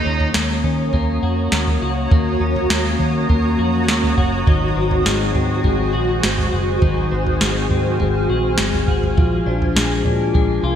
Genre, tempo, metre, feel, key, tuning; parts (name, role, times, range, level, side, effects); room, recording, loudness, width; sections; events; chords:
dream pop; 102 BPM; 4/4; straight; Eb dorian; A4 = 435 Hz
granular cloud pad; sustained chords; 0.0-10.8 s; F4 to F6; -22 LUFS; right 1 dB; built-in reverb, analog chorus
twelve-string electric guitar; arpeggios; 0.0-10.8 s; Eb3 to Gb4; -21 LUFS; left 3 dB; lush chorus, ping-pong delay
vintage muted fingered electric bass; bass; 0.1-10.8 s; Gb1 to Eb3; -22 LUFS; equal
soft vintage rhythm box; drums; 0.2-10.5 s; kick drum, snare drum, toms; -19 LUFS; right 1 dB; gated reverb
moderate lush hall reverb, RT60 2.1 s; bright 1980s-style digital production; -15 LUFS; side -9 dB against mid
0.0-10.8 A section
0.0 Ebm7; 4.5 Ab7; 9.2 Bb7